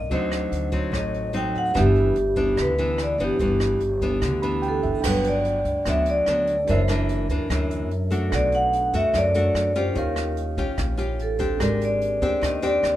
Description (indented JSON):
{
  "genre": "bossa nova",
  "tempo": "146 BPM",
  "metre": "4/4",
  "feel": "straight",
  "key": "G major",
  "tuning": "A4 = 438 Hz",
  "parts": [
    { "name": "vibraphone with medium hard mallets", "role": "melody", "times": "0.0-13.0 s", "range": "G4 to G5", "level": "-23 LUFS", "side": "equal", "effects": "none" },
    { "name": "bright tine electric piano", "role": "accompaniment", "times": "0.0-13.0 s", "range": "C4 to B5", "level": "-32 LUFS", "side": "right 5 dB", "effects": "none" },
    { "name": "nylon-string guitar", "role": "accompaniment", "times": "0.0-13.0 s", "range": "F#2 to G4", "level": "-26 LUFS", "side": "left 1 dB", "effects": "none" },
    { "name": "upright bass", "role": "bass", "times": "0.0-13.0 s", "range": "F#1 to F#2", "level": "-27 LUFS", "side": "equal", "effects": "none" },
    { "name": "jazz brush drum kit", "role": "drums", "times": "0.1-12.9 s", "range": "crash cymbal, hi-hat, kick drum, rim click", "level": "-31 LUFS", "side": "equal", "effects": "none" }
  ],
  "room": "light reverb",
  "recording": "minimal, uncompressed stereo recording",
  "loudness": "-20 LUFS",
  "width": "side -13 dB against mid",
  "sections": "0.0-5.0 A section; 5.0-13.0 B section",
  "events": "tine electric piano fill 4.2-5.0",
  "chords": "0.1 D7b9; 1.8 G6; 5.0 Gmaj7; 6.7 F#7alt; 8.3 Bm7; 10.0 Eb9; 11.6 Abmaj9#11",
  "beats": "| 0.11 0.52 0.93 1.34 | 1.75 2.16 2.58 2.98 | 3.40 3.81 4.22 4.63 | 5.04 5.45 5.86 6.27 | 6.68 7.09 7.50 7.91 | 8.32 8.73 9.14 9.55 | 9.96 10.37 10.78 11.19 | 11.60 12.01 12.42 12.83"
}